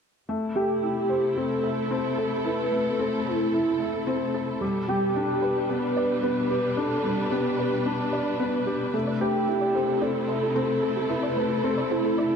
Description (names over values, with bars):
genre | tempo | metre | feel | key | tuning
piano and strings electronica | 111 BPM | 4/4 | straight | A minor | A4 = 440 Hz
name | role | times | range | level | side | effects
warm studio string section | sustained chords | 0.3-12.4 s | B2 to B4 | -30 LUFS | equal | none
felt-muted upright piano | riff | 0.3-12.4 s | G3 to E5 | -27 LUFS | left 2 dB | low-pass filter, ping-pong delay
warm velvety synth lead | melody | 0.6-12.4 s | E4 to B4 | -27 LUFS | right 1 dB | chorus
soft round pluck | arpeggios | 8.9-12.2 s | G4 to D5 | -34 LUFS | right 4 dB | none
room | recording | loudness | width
moderate concert hall reverb, RT60 2.1 s | none | -23 LUFS | side -6 dB against mid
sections
0.3-12.4 A section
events
none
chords
0.3 Am; 4.6 G; 8.9 Am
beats
| 0.29 0.83 1.37 1.91 | 2.46 3.00 3.54 4.08 | 4.62 5.16 5.70 6.24 | 6.78 7.32 7.86 8.40 | 8.94 9.48 10.02 10.56 | 11.10 11.64 12.18